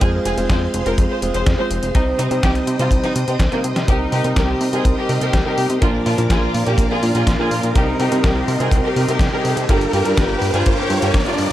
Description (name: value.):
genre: italo disco.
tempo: 124 BPM.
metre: 4/4.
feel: straight.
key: unclear.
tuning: A4 = 436 Hz.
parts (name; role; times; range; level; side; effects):
rich symphonic violin section; melody; 0.0-11.5 s; Bb3 to C5; -23 LUFS; equal; tape echo.
string machine, full ensemble; sustained chords; 0.0-11.5 s; Ab4 to Eb6; -26 LUFS; equal; phaser, ensemble chorus.
clear concert grand piano; stabs; 0.0-11.5 s; G2 to C5; -22 LUFS; right 1 dB; low-pass filter.
chorused synth bass; bass; 0.0-11.5 s; F1 to C3; -22 LUFS; equal; none.
detuned 8-bit digital drum machine; drums; 0.0-11.5 s; hi-hat, snare drum; -26 LUFS; left 1 dB; overdrive.
kick drum; drums; 0.0-11.2 s; none; -18 LUFS; equal; none.
riser; sound effects; 6.9-11.5 s; none; -27 LUFS; equal; none.
room: light reverb, small room reverb.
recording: dry, gritty hardware recording.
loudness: -15 LUFS.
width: side -13 dB against mid.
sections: 0.0-3.9 A section; 3.9-11.5 B section.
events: drum fill 3.4-3.9; filter sweep on grand piano 3.9-11.5; riser 6.9-11.5.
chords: 0.0 Fm; 1.9 Cm; 3.9 Cm7; 5.8 Bb; 7.8 Cm7; 9.7 Gm7.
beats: | 0.01 0.50 0.98 1.46 | 1.95 2.43 2.92 3.40 | 3.88 4.37 4.85 5.33 | 5.82 6.30 6.79 7.27 | 7.75 8.24 8.72 9.21 | 9.69 10.17 10.66 11.14.